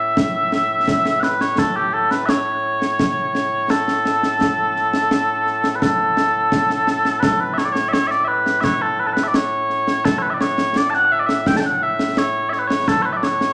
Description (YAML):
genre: scottish traditional, Scottish pipe music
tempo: 85 BPM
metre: 2/4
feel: straight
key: A major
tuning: A4 = 440 Hz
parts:
  - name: mellow small bagpipes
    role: melody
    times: 0.0-13.5 s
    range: A2 to A5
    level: -20 LUFS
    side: equal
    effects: none
  - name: concert snare drum and concert bass drum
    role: drums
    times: 0.2-13.5 s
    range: none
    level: -24 LUFS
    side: equal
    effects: none
room: wet large studio reverb, RT60 1.3 s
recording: vinyl crackle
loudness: -19 LUFS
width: mono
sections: 0.0-7.2 A section; 7.2-13.5 B section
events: none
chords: none